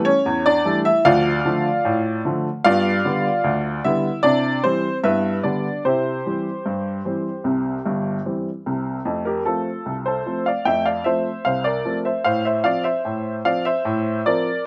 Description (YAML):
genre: ragtime piano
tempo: 75 BPM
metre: 2/4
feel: straight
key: C major, F major from 9.1 s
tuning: A4 = 440 Hz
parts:
  - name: clear upright piano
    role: solo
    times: 0.0-14.6 s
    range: G1 to G5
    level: -21 LUFS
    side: equal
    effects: none
room: little or no reverb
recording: recorded outdoors, with no room sound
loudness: -21 LUFS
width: mono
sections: 0.0-9.1 A section; 9.1-14.7 B section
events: none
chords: 0.0 A7; 1.1 Dm; 2.6 G7; 4.2 C; 5.0 G; 5.8 C; 9.1 F; 12.3 F/A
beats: 0.26 | 1.05 1.85 | 2.65 3.45 | 4.24 5.04 | 5.84 6.65 | 7.45 8.25 | 9.06 9.86 | 10.66 11.46 | 12.26 13.06 | 13.86